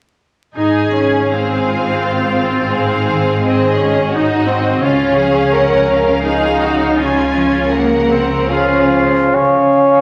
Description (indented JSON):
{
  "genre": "classical, slow romantic movement for symphony orchestra",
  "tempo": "65-87 BPM",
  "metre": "3/4",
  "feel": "rubato",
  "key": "Db major",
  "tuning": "A4 = 440 Hz",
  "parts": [
    { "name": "rich symphonic violin section", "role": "melody", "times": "0.6-9.1 s", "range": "Eb5 to Ab5", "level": "-26 LUFS", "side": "equal", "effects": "none" },
    { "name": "rich studio violin section", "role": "second line", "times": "0.6-9.1 s", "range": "F4 to Bb4", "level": "-22 LUFS", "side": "equal", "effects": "none" },
    { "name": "rich studio viola section", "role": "accompaniment", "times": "0.6-9.1 s", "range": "Bb3 to Eb4", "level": "-18 LUFS", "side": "equal", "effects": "none" },
    { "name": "concert harp", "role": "arpeggios", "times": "0.6-10.0 s", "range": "Ab2 to Db5", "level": "-27 LUFS", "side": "equal", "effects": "none" },
    { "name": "rich chamber double bass section", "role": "bass", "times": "0.6-9.1 s", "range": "Ab1 to Db2", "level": "-27 LUFS", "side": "equal", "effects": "none" },
    { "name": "rich studio cello section", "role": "bass", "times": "0.6-9.1 s", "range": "Ab2 to Db3", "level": "-24 LUFS", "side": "equal", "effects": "none" },
    { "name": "clear oboe", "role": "second line", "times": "8.5-10.0 s", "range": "F4 to Db5", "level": "-19 LUFS", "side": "equal", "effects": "none" },
    { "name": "warm bassoon", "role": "accompaniment", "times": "8.5-10.0 s", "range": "F3 to Db4", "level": "-16 LUFS", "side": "equal", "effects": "none" },
    { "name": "mellow hollow concert flute", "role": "second line", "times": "9.3-10.0 s", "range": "F5", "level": "-22 LUFS", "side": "equal", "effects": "none" },
    { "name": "warm clarinet", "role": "second line", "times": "9.3-10.0 s", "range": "Db4", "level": "-23 LUFS", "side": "equal", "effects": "none" }
  ],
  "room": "wet recital hall reverb, RT60 1.7 s",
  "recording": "vinyl crackle",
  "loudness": "-14 LUFS",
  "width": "mono",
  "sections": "0.6-9.3 A section",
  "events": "none",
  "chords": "0.6 Db/Ab; 2.7 Ab7; 4.8 Db"
}